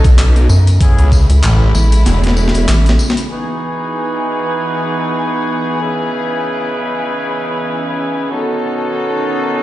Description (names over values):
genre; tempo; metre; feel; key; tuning
glitch hop; 96 BPM; 4/4; swing 56% on 16ths; unclear; A4 = 439 Hz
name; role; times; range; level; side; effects
dark studio string section; sustained chords; 0.0-9.6 s; C#3 to A4; -20 LUFS; equal; sidechain pumping
mellow horn section; stabs; 0.0-9.6 s; B2 to B4; -19 LUFS; right 1 dB; sidechain pumping, low-pass filter, tape echo
phased detuned saw bass; bass; 0.0-2.7 s; E1 to C#2; -10 LUFS; equal; phaser
boom bap sampler-style drum kit; drums; 0.0-3.3 s; handclaps, hi-hat, snare drum; -20 LUFS; left 1 dB; overdrive, low-pass filter on hats, low-pass filter on snare, low-pass filter on room
electronic kick drum; drums; 0.0-1.3 s; none; -10 LUFS; equal; overdrive
tambourine; percussion; 0.0-3.3 s; none; -28 LUFS; left 2 dB; none
rubbery square bass; bass; 0.5-3.0 s; A1 to F#2; -9 LUFS; equal; none
room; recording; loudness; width
light reverb, studio ambience; played on a big sound system in a bare room, stone room reverb, nothing above 10.4 kHz; -12 LUFS; side -15 dB against mid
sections
0.0-3.3 A section; 3.3-9.6 B section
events
break 2.1-3.3; drum fill 2.1-3.3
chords
0.0 B9; 0.8 Amaj7; 3.3 Emaj7; 5.8 C#m7; 8.3 B9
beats
0.18 | 0.81 1.44 2.06 2.69 | 3.31 3.94 4.56 5.18 | 5.81 6.43 7.06 7.68 | 8.31 8.94 9.56